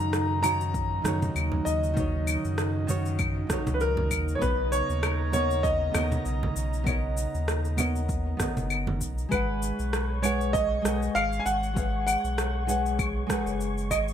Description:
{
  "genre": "sunset chillout",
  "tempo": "98 BPM",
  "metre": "4/4",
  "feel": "swing 56% on 16ths",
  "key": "G# minor",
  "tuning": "A4 = 440 Hz",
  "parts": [
    { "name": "warm grand piano", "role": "melody", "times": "0.0-14.0 s", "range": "A#4 to A#5", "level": "-30 LUFS", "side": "equal", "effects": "wide subtle chorus, ping-pong delay" },
    { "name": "nylon-string guitar", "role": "accompaniment", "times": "0.0-14.1 s", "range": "D#3 to F#5", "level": "-32 LUFS", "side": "moving between left 4 dB and right 2 dB", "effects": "auto-pan, ping-pong delay" },
    { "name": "airy breathy pad", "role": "sustained chords", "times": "0.0-9.3 s", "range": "C#3 to A#5", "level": "-36 LUFS", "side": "right 4 dB", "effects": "chorus" },
    { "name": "warm sub bass", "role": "bass", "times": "0.0-14.1 s", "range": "F#1 to F#2", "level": "-29 LUFS", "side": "equal", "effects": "none" },
    { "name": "electronic cabasa, rim click and claves", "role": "drums", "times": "0.0-14.1 s", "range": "none", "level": "-32 LUFS", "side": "left 2 dB", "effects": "overdrive, gated reverb" },
    { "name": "congas", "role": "percussion", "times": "0.4-9.0 s", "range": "none", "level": "-34 LUFS", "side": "right 2 dB", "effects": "none" },
    { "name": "electronic kick drum", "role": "drums", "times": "0.7-14.0 s", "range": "none", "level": "-32 LUFS", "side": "equal", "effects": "overdrive" },
    { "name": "wind-like tuned noise texture", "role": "texture", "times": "9.6-14.1 s", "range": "C#5 to C#6", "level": "-42 LUFS", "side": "right 1 dB", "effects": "built-in reverb, ensemble chorus" }
  ],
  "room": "light reverb",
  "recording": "bright 1980s-style digital production",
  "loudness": "-24 LUFS",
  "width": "side -9 dB against mid",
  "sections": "0.0-9.3 A section; 9.3-14.1 A section",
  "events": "none",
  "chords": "0.0 D#m7; 4.4 Bmaj9; 9.3 G#m7",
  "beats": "0.13 0.74 1.36 | 1.97 2.58 3.19 3.81 | 4.42 5.03 5.64 6.25 | 6.87 7.48 8.09 8.70 | 9.32 9.93 10.54 11.15 | 11.77 12.38 12.99 13.60"
}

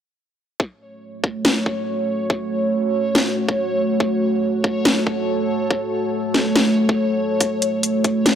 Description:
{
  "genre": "deep dubstep",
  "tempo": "141 BPM",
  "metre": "4/4",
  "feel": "swing 57% on 16ths, half-time",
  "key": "F# minor",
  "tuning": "A4 = 438 Hz",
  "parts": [
    { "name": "deep dark ambient pad", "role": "sustained chords", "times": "1.2-8.4 s", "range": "A3 to C#5", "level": "-20 LUFS", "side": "right 1 dB", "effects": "chorus, built-in reverb" },
    { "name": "electronic kick drum", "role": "drums", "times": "0.6-8.1 s", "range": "none", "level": "-20 LUFS", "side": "left 1 dB", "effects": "high-pass filter on kick" },
    { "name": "backwards swelling texture", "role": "texture", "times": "1.6-8.4 s", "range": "C#5", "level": "-26 LUFS", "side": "left 2 dB", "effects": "built-in reverb" },
    { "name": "garage drum kit", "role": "drums", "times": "1.4-8.4 s", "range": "hi-hat, snare drum", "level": "-18 LUFS", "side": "left 1 dB", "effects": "none" }
  ],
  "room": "moderate echo chamber reverb, RT60 1.8 s",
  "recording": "dry, gritty hardware recording",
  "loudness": "-18 LUFS",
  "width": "side -9 dB against mid",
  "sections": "0.6-8.4 A section",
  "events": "none",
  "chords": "0.6 F#m",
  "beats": "| 0.60 1.02 1.45 1.88 | 2.30 2.73 3.15 3.58 | 4.00 4.43 4.85 5.28 | 5.70 6.13 6.55 6.98 | 7.41 7.83 8.26"
}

